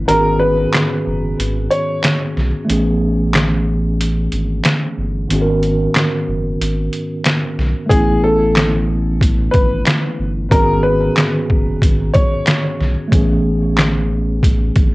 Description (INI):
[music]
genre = hip hop, boom-bap hip-hop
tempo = 92 BPM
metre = 4/4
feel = swing 56% on 16ths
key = G# phrygian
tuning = A4 = 440 Hz
[part]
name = mellow tine electric piano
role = accompaniment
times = 0.0-14.9 s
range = G#2 to A#4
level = -19 LUFS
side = equal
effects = medium stereo tremolo, cassette tape, high-pass filter, low-pass filter, plate reverb
[part]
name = soft dub sub bass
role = bass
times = 0.0-14.9 s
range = F#1 to B1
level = -19 LUFS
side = equal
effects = none
[part]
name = clear upright piano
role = melody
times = 0.1-2.2, 7.9-12.6 s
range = G#4 to C#5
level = -18 LUFS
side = left 1 dB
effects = high-pass filter, low-pass filter, cassette tape, plate reverb, tape echo
[part]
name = trip hop sampler-style drum kit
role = drums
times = 0.1-14.9 s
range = handclaps, hi-hat, kick drum, snare drum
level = -16 LUFS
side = equal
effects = none
[sound]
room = light reverb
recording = home recording on cassette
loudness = -13 LUFS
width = side -21 dB against mid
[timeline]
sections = 0.0-14.9 A section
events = break 0.0-7.9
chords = 0.1 G#m7; 2.7 Amaj7; 5.3 G#m11; 7.9 A; 10.5 G#m7; 13.1 Amaj7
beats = | 0.08 0.73 1.38 2.04 | 2.69 3.34 3.99 4.64 | 5.30 5.95 6.60 7.25 | 7.91 8.56 9.21 9.86 | 10.51 11.16 11.82 12.47 | 13.12 13.77 14.43